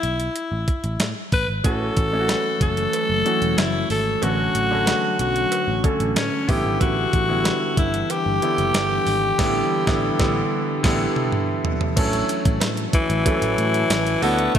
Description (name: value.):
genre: 1980s-style pop.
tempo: 93 BPM.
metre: 4/4.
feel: straight.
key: A mixolydian.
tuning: A4 = 440 Hz.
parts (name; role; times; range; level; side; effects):
raspy alto saxophone; melody; 0.0-14.6 s; E3 to B4; -22 LUFS; left 2 dB; none.
picked electric bass; bass; 0.0-14.6 s; E1 to A2; -26 LUFS; equal; none.
clean 12-bit digital drum machine; drums; 0.0-14.6 s; crash cymbal, hi-hat, kick drum, snare drum, tambourine, toms; -23 LUFS; equal; none.
clear baby grand piano; accompaniment; 1.6-14.6 s; D3 to A4; -25 LUFS; right 1 dB; none.
glassy FM pad; sustained chords; 2.4-14.6 s; D3 to D6; -29 LUFS; equal; ensemble chorus, built-in reverb.
cowbell; percussion; 1.6-14.6 s; none; -37 LUFS; right 10 dB; none.
room: moderate lush hall reverb, RT60 2.0 s, digital ambience.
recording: bright 1980s-style digital production.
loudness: -18 LUFS.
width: side -9 dB against mid.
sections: 0.0-12.0 A section; 12.0-14.6 B section.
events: band accent 9.4-12.0; drum fill 10.7-12.0.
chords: 0.0 A5; 1.6 F#m7; 4.2 Dmaj7/A; 6.5 Em7; 12.0 A6.